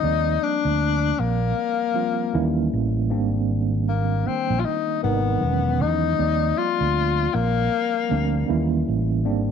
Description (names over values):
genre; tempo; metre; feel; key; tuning
R&B; 78 BPM; 4/4; swing 60% on 16ths; Eb major; A4 = 441 Hz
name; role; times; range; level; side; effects
mellow tenor saxophone; melody; 0.0-8.9 s; Bb3 to F4; -23 LUFS; left 10 dB; none
mellow tine electric piano; accompaniment; 0.0-9.5 s; C3 to D5; -26 LUFS; right 3 dB; medium stereo tremolo
fingered electric bass; bass; 0.0-9.5 s; E1 to E2; -23 LUFS; right 2 dB; none
room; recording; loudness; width
light reverb, small room ambience; none; -20 LUFS; side -7 dB against mid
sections
0.0-9.5 A section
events
none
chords
0.0 Ebmaj9; 2.3 Eb7b9; 3.1 Abmaj9; 5.4 Emaj9; 6.2 Ebmaj9; 8.5 Eb7b9